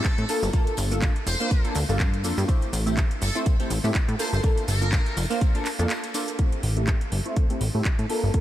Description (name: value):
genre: filtered disco house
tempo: 123 BPM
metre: 4/4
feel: swing 56% on 16ths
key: unclear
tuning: A4 = 440 Hz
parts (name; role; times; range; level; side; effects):
- muted trumpet section; melody; 0.0-5.2 s; A4 to C5; -35 LUFS; equal; vintage 12-bit sampler grit, sidechain pumping, low-pass filter, diffuse ambient delay
- funky polysynth comp; accompaniment; 0.0-8.4 s; A3 to C5; -29 LUFS; equal; chorus, phaser, sidechain pumping, low-pass filter
- electronic kick drum; drums; 0.0-8.4 s; none; -23 LUFS; equal; none
- house drum kit; drums; 0.0-8.4 s; handclaps, hi-hat, shaker; -32 LUFS; right 1 dB; sidechain pumping on perc, sidechain pumping on hats
- tambourine; percussion; 0.1-6.4 s; none; -42 LUFS; left 7 dB; sidechain pumping on perc, low-pass filter on perc
- plucky analog bass; bass; 0.2-8.3 s; F1 to A2; -25 LUFS; equal; tube saturation, sidechain pumping, low-pass filter
room: light reverb, digital ambience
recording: none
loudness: -22 LUFS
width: side -13 dB against mid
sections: 0.0-6.4 A section; 6.4-8.4 B section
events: drop 0.0-6.4; break 5.9-6.4; filter sweep 6.4-8.4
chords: 0.3 Gm7; 2.5 Am7; 4.2 Gm7; 6.4 Am7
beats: 0.05 | 0.54 1.02 1.51 2.00 | 2.49 2.98 3.46 3.95 | 4.44 4.93 5.41 5.90 | 6.39 6.88 7.37 7.85 | 8.34